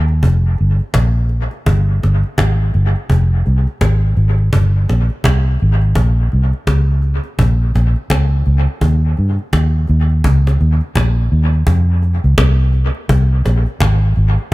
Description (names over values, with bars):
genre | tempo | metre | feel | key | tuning
lovers rock reggae | 84 BPM | 4/4 | swing 60% on 16ths | F minor | A4 = 440 Hz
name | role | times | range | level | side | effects
vintage muted fingered electric bass | bass | 0.0-14.4 s | F1 to G2 | -12 LUFS | equal | none
cajon | drums | 0.1-14.5 s | none | -20 LUFS | equal | dub echo
room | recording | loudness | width
studio reverb | none | -12 LUFS | side -19 dB against mid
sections
0.0-11.7 A section; 11.7-14.5 B section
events
none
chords
none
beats
| 0.23 0.95 1.66 2.38 | 3.09 3.81 4.52 5.24 | 5.95 6.67 7.38 8.10 | 8.81 9.53 10.24 10.96 | 11.67 12.38 13.10 13.81 | 14.52